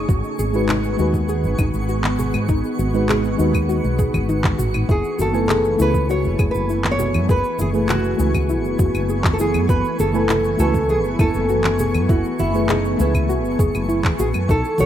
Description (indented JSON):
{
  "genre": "sunset chillout",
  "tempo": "100 BPM",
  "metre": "4/4",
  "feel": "straight",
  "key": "F# dorian",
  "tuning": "A4 = 442 Hz",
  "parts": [
    { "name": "mellow FM electric piano", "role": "accompaniment", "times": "0.0-14.5 s", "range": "G#3 to G#5", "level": "-25 LUFS", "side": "left 1 dB", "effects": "chorus, auto-pan, low-pass filter, digital delay" },
    { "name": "shimmering ambient pad", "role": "sustained chords", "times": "0.0-14.9 s", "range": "C#3 to G#5", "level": "-26 LUFS", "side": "equal", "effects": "chorus, built-in reverb" },
    { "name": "woody fretless electric bass", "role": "bass", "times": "0.0-14.9 s", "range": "E1 to G#2", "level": "-22 LUFS", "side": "equal", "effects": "none" },
    { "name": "twinkling granular texture", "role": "texture", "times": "0.0-14.9 s", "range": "C#6", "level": "-35 LUFS", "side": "right 1 dB", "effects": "built-in reverb" },
    { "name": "soft round pluck", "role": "arpeggios", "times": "0.1-14.9 s", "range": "D#4 to G#4", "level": "-26 LUFS", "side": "left 1 dB", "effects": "wide subtle chorus, digital delay" },
    { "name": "electronic kick drum", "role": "drums", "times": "0.1-14.6 s", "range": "none", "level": "-19 LUFS", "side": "equal", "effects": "none" },
    { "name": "smooth R&B drum kit", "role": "drums", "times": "0.1-14.9 s", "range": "claves, handclaps, shaker, toms", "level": "-26 LUFS", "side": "left 1 dB", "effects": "none" },
    { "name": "congas", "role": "percussion", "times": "0.4-14.9 s", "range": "none", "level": "-30 LUFS", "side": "right 3 dB", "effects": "none" },
    { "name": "nylon-string guitar", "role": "melody", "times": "4.9-14.9 s", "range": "D#4 to C#5", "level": "-23 LUFS", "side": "equal", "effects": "digital delay" }
  ],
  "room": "light reverb",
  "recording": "rough home demo mix",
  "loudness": "-16 LUFS",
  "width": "side -10 dB against mid",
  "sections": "0.0-14.9 A section",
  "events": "drum fill 3.7-4.9",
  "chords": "0.1 G#m7; 4.9 F#m11",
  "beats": "| 0.09 0.69 1.29 1.89 | 2.49 3.09 3.69 4.29 | 4.89 5.49 6.09 6.69 | 7.29 7.89 8.49 9.09 | 9.69 10.29 10.89 11.49 | 12.09 12.69 13.29 13.89 | 14.49"
}